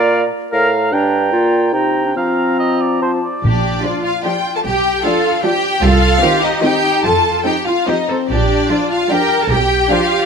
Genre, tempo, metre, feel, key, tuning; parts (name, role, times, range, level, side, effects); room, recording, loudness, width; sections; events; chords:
classical; 137-154 BPM; 3/4; rubato; Bb major; A4 = 440 Hz
clear clarinet; second line; 0.0-3.2 s; C4 to D5; -18 LUFS; left 1 dB
mellow concert flute; second line; 0.0-3.2 s; A5 to Bb5; -22 LUFS; right 4 dB
warm cor anglais; second line; 0.0-3.4 s; C5 to G5; -20 LUFS; right 2 dB
mellow bassoon; accompaniment; 0.0-3.2 s; G2 to F3; -18 LUFS; equal
rich studio violin section; melody; 3.4-10.3 s; C5 to A5; -18 LUFS; left 4 dB
warm symphonic violin section; second line; 3.4-10.3 s; C4 to A4; -18 LUFS; left 1 dB
rich symphonic cello section; bass; 3.4-10.3 s; Eb4 to Bb4; -20 LUFS; right 3 dB
rich symphonic double bass section; bass; 3.4-9.8 s; Bb1 to F2; -18 LUFS; right 2 dB
timpani; percussion; 3.4-4.0 s; Bb2; -20 LUFS; equal
rich symphonic viola section; accompaniment; 3.8-10.2 s; Eb3 to D4; -21 LUFS; equal
moderate scoring stage reverb, RT60 1.6 s; close, detailed microphones; -13 LUFS; side -6 dB against mid
0.0-3.4 A section; 3.4-10.3 B section
0.0 Bb; 0.9 Gm; 1.7 Cm7; 2.2 Fsus4; 3.4 Bb; 4.6 G7/B; 5.8 Cm; 7.0 F; 8.3 Bb; 9.5 G7/B